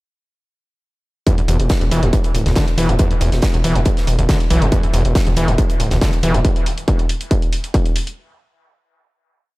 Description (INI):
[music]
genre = driving peak-time techno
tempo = 139 BPM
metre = 4/4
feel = straight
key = unclear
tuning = A4 = 440 Hz
[part]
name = screaming distorted acid line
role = riff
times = 1.3-6.4 s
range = D2 to E3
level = -21 LUFS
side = equal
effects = distortion, chorus, sidechain pumping, dub echo
[part]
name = electronic hi-hat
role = drums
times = 1.3-8.2 s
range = none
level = -29 LUFS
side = equal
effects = sidechain pumping on hats
[part]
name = electronic kick drum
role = drums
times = 1.3-7.8 s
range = none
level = -16 LUFS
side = equal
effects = distortion
[part]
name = gated 80s drum kit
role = drums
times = 1.3-6.3 s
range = hi-hat, snare drum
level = -32 LUFS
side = right 2 dB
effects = high-pass filter on hats, high-pass filter on snare, high-pass filter on room, dub echo
[part]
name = gritty driven synth bass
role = bass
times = 1.5-6.4 s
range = D1 to B1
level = -17 LUFS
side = equal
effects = sidechain pumping
[sound]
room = studio ambience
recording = echo-heavy mix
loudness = -14 LUFS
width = side -21 dB against mid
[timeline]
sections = 1.3-8.2 groove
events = none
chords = 1.3 E5